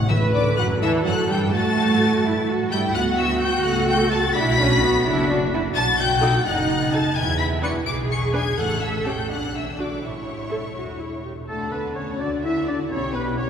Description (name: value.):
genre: quick classical-period movement for symphony orchestra.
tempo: 85 BPM (dotted quarters).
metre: 6/8.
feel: straight.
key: D major.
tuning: A4 = 436 Hz.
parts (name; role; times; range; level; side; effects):
rich studio violin section; second line; 0.0-13.5 s; A4 to D6; -28 LUFS; left 3 dB; none.
timpani; percussion; 0.0-0.8, 8.6-9.3 s; A2 to D3; -28 LUFS; equal; none.
rich symphonic violin section; melody; 0.1-13.5 s; F#5 to D7; -27 LUFS; left 4 dB; none.
warm studio viola section; accompaniment; 0.1-13.5 s; D3 to B4; -25 LUFS; right 1 dB; none.
rich studio cello section; bass; 0.1-13.5 s; B2 to B4; -26 LUFS; right 1 dB; none.
warm studio double bass section; bass; 0.1-13.5 s; E1 to A2; -27 LUFS; right 2 dB; none.
concert flute; second line; 11.5-13.5 s; A4 to E5; -42 LUFS; left 2 dB; none.
warm oboe; second line; 11.5-13.5 s; A4 to E5; -32 LUFS; right 2 dB; none.
dark French horn section; sustained chords; 11.5-13.5 s; A3 to E4; -30 LUFS; left 3 dB; none.
room: wet cathedral reverb, RT60 5.6 s.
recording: recorded in a church or concert hall.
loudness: -19 LUFS.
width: side -8 dB against mid.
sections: 0.1-11.5 A section; 11.5-13.5 B section.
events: none.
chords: 0.1 D; 1.5 A5; 2.9 D; 4.4 Bm; 5.8 B7; 7.2 E7; 8.6 A7; 9.3 Bm; 10.0 A; 11.5 D; 12.9 G/B.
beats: | 0.10 0.82 | 1.53 2.24 | 2.95 3.65 | 4.36 5.06 | 5.75 6.46 | 7.16 7.87 | 8.57 9.29 | 10.03 10.76 | 11.49 12.20 | 12.91.